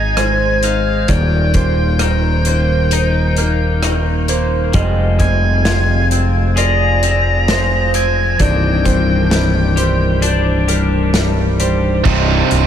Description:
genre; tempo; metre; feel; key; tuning
post-rock; 66 BPM; 4/4; straight; C minor; A4 = 439 Hz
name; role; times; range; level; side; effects
octave-fuzz lead guitar; melody; 0.0-11.6 s; F5 to Bb5; -21 LUFS; left 2 dB; distortion, ping-pong delay
electric guitar through a small old amp; arpeggios; 0.0-12.7 s; Bb4 to F5; -22 LUFS; right 3 dB; lush chorus, ping-pong delay
twelve-string electric guitar; arpeggios; 0.0-12.7 s; C2 to Ab4; -21 LUFS; left 4 dB; wide subtle chorus, ping-pong delay
growling picked electric bass; bass; 0.0-12.7 s; C1 to Ab1; -16 LUFS; equal; overdrive
loose indie drum kit; drums; 0.2-12.7 s; crash cymbal, hi-hat, kick drum, rim click, snare drum; -20 LUFS; equal; none
pedal steel guitar; sustained chords; 4.7-12.7 s; C3 to Ab4; -23 LUFS; left 3 dB; lush chorus
tight distorted guitar; riff; 12.0-12.7 s; C2 to C3; -15 LUFS; right 10 dB; distortion
room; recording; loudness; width
moderate huge ambient reverb, RT60 6.9 s; dreamy mix soaked in reverb; -12 LUFS; side -9 dB against mid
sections
0.0-12.1 A section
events
none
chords
0.0 Ab; 1.1 Eb; 4.7 Fmadd9; 8.4 Cmadd9; 12.1 Cm

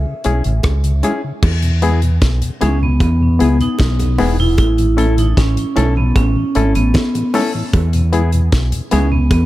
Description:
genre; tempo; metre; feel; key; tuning
roots reggae; 76 BPM; 4/4; straight; E major; A4 = 440 Hz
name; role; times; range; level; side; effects
vibraphone with hard mallets; melody; 0.0-9.5 s; B3 to E5; -19 LUFS; right 1 dB; tape echo
deep dub fingered electric bass; bass; 0.0-9.5 s; E1 to E2; -15 LUFS; equal; none
mellow tonewheel organ; accompaniment; 0.1-9.2 s; E2 to E4; -24 LUFS; left 2 dB; slow rotary speaker, dub echo
barky reed electric piano; stabs; 0.2-9.1 s; B3 to A4; -22 LUFS; left 4 dB; overdrive
damped 70s drum kit; drums; 0.2-9.5 s; crash cymbal, hi-hat, kick drum, rim click, snare drum; -18 LUFS; equal; dub echo
bongos; percussion; 0.6-9.5 s; none; -27 LUFS; right 4 dB; none
room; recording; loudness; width
small room ambience; echo-heavy mix; -13 LUFS; side -16 dB against mid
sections
0.0-1.4 A section; 1.4-9.5 B section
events
none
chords
0.0 C#m; 1.4 E; 4.6 A; 7.7 E

